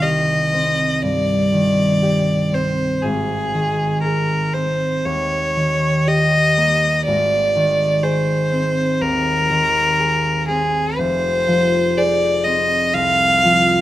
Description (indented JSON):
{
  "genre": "classical, romantic duo for violin and harp",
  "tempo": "60 BPM",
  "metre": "4/4",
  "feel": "rubato",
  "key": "unclear",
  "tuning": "A4 = 439 Hz",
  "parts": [
    { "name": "clear violin", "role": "melody", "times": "0.0-13.8 s", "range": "Ab4 to F5", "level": "-17 LUFS", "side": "left 1 dB", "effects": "none" },
    { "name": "concert harp", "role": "accompaniment", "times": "0.0-13.8 s", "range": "F1 to Ab4", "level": "-19 LUFS", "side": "right 1 dB", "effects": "none" }
  ],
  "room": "light reverb",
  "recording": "close, detailed microphones",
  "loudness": "-15 LUFS",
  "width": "side -14 dB against mid",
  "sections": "0.0-13.8 A section",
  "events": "none",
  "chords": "0.0 Cm; 3.0 Ab; 5.0 Eb7; 7.1 Ab; 11.0 Fm"
}